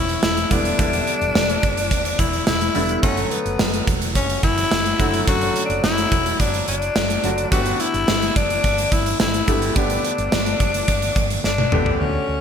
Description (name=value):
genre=1980s-style pop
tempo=107 BPM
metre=4/4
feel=straight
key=unclear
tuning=A4 = 440 Hz
part: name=raspy tenor saxophone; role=melody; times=0.0-12.4 s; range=B3 to F#4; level=-22 LUFS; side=left 4 dB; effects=ping-pong delay
part: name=clear concert grand piano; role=accompaniment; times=0.0-12.4 s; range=D3 to G4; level=-26 LUFS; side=equal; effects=wide subtle chorus
part: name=woody fretless electric bass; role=bass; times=0.0-12.4 s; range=E1 to D2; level=-26 LUFS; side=right 1 dB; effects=none
part: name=gated 80s drum kit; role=drums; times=0.1-12.0 s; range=hi-hat, kick drum, snare drum, tambourine, toms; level=-20 LUFS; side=right 1 dB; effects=gated reverb
room=moderate lush hall reverb, RT60 1.7 s, small room ambience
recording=bright 1980s-style digital production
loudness=-17 LUFS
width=side -7 dB against mid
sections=0.0-12.0 A section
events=drum fill 11.4-12.0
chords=0.0 Em7; 3.0 D; 7.5 Gadd9